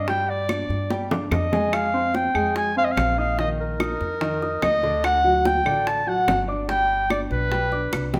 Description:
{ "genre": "latin, Cuban son and guajira", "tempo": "145 BPM", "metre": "4/4", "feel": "straight", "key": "unclear", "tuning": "A4 = 438 Hz", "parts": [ { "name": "warm clarinet", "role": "melody", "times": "0.0-8.1 s", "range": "Bb4 to A5", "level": "-25 LUFS", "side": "equal", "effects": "none" }, { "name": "warm concert grand piano", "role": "arpeggios", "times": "0.0-8.2 s", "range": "D3 to Eb6", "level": "-30 LUFS", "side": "equal", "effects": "none" }, { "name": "upright bass", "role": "bass", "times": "0.0-8.2 s", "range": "G1 to G2", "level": "-31 LUFS", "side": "equal", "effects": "none" }, { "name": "bongos", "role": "percussion", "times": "0.1-8.2 s", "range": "none", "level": "-32 LUFS", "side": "equal", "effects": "none" }, { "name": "claves", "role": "percussion", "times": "0.5-8.1 s", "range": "none", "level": "-36 LUFS", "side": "equal", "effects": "none" } ], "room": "moderate large studio reverb, RT60 1.4 s", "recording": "none", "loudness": "-22 LUFS", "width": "mono", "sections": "0.0-8.2 A section", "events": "drum fill 0.9-1.7, 7.9", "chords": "0.1 G5; 1.7 Fm; 3.4 Bbsus4; 5.0 D; 6.7 G" }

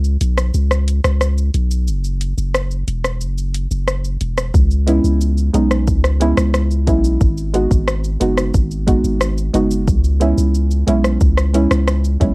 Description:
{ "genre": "dancehall", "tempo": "90 BPM", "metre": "4/4", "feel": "straight", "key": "C# minor", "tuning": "A4 = 440 Hz", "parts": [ { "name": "punchy sub bass", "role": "bass", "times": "0.0-12.3 s", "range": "E1 to C#2", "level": "-16 LUFS", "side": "equal", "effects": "none" }, { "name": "deep house drum kit", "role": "drums", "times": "0.0-12.3 s", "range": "hi-hat, kick drum, rim click, shaker", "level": "-18 LUFS", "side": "equal", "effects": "none" }, { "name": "soft round pluck", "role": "accompaniment", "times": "4.9-12.3 s", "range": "G#3 to F#4", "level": "-18 LUFS", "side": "right 2 dB", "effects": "chorus, cassette tape" } ], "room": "little or no reverb", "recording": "home recording on cassette", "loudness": "-14 LUFS", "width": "side -24 dB against mid", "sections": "0.0-12.3 A section", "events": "break 0.0-4.5", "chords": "0.0 Bsus2; 1.9 Esus2; 4.5 C#m7; 7.2 G#m7; 9.9 C#m7" }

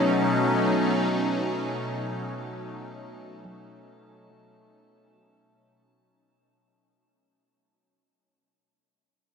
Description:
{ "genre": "ambient", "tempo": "free time", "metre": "none", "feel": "none", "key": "unclear", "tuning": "A4 = 439 Hz", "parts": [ { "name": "evolving wavetable pad", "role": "sustained chords", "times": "0.0-5.7 s", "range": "B2 to D#4", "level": "-25 LUFS", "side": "equal", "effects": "phaser, built-in reverb" }, { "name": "pedal harmonium", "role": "drone", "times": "0.0-5.8 s", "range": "A3", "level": "-36 LUFS", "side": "equal", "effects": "none" }, { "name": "drifting glass-harmonics texture", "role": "texture", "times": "0.0-5.7 s", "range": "A5", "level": "-41 LUFS", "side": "right 1 dB", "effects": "chorus, built-in reverb" }, { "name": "soft round pluck", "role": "arpeggios", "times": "3.5-8.3 s", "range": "F#3", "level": "-52 LUFS", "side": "equal", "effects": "chorus, ping-pong delay" } ], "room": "wet huge ambient reverb, RT60 8.4 s", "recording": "cassette tape", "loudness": "-23 LUFS", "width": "side -6 dB against mid", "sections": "0.0-5.7 A section", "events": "fade-out 0.0-5.7", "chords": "0.0 B7" }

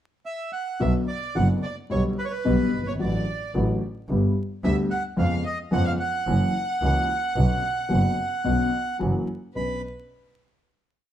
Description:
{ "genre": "tango", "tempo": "110 BPM", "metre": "4/4", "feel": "rubato", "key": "B minor", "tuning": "A4 = 440 Hz", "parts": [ { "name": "bandoneon", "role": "melody", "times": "0.3-9.8 s", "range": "B4 to B5", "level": "-29 LUFS", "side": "right 4 dB", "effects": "none" }, { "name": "warm chamber violin section", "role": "second line", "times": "0.8-9.8 s", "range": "B4 to F#5", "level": "-35 LUFS", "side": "left 1 dB", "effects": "none" }, { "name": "dark upright piano", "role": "accompaniment", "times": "0.8-9.8 s", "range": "F#1 to B4", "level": "-26 LUFS", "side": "left 2 dB", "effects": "none" }, { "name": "clear double bass", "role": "bass", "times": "0.8-9.8 s", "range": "F#1 to E#2", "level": "-25 LUFS", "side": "right 1 dB", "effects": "none" } ], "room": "moderate stone room reverb, RT60 1.0 s", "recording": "band playing live in one room, vinyl crackle", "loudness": "-22 LUFS", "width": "side -11 dB against mid", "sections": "0.0-0.8 pickup bar; 0.8-9.6 A section; 9.6-11.1 final chord", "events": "none", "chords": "0.0 N.C.; 0.8 Bm; 1.9 G/B; 3.0 D/A; 4.1 G; 5.2 C#7/E#; 6.3 F#7; 7.4 Bmadd9; 9.0 F#7; 9.6 Bmadd9" }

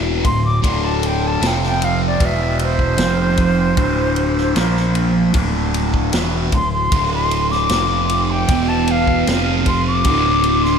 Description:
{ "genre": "psychedelic rock", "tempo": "76 BPM", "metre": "4/4", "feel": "straight", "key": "D minor", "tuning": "A4 = 440 Hz", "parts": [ { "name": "fuzz guitar", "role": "riff", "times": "0.0-10.8 s", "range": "D2 to Bb3", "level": "-18 LUFS", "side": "right 2 dB", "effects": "distortion, phaser" }, { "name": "growling picked electric bass", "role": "bass", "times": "0.0-10.8 s", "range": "D1 to Bb1", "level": "-21 LUFS", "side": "equal", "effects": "overdrive" }, { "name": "vintage drum kit", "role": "drums", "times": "0.2-10.7 s", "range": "kick drum, ride cymbal, snare drum", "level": "-23 LUFS", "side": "equal", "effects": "none" }, { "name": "bright reedy concert flute", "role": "melody", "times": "0.3-10.8 s", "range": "C5 to D6", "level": "-20 LUFS", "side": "left 1 dB", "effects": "ping-pong delay" } ], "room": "moderate church reverb, RT60 2.7 s", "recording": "dreamy mix soaked in reverb", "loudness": "-14 LUFS", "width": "side -6 dB against mid", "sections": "0.0-10.8 A section", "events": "flute solo 0.0-10.8", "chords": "0.0 D5; 1.4 F5; 2.2 E5; 3.0 F5; 3.8 D5; 4.6 Bb5; 5.3 D5; 7.7 F5; 8.5 E5; 9.3 F5; 10.1 D5" }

